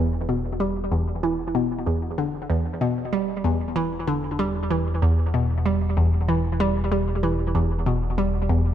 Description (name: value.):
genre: ambient, sequencer-driven space music.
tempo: 95 BPM.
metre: 4/4.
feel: straight.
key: E minor.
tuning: A4 = 437 Hz.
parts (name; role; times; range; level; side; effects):
hollow square pluck; riff; 0.0-8.7 s; E2 to G3; -22 LUFS; equal; chorus, phaser, analog delay.
fat analog bass; bass; 0.0-8.7 s; E1; -26 LUFS; equal; none.
room: light reverb, digital ambience.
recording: none.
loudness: -21 LUFS.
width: side -10 dB against mid.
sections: 0.0-8.7 A section.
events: none.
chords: 0.0 Em.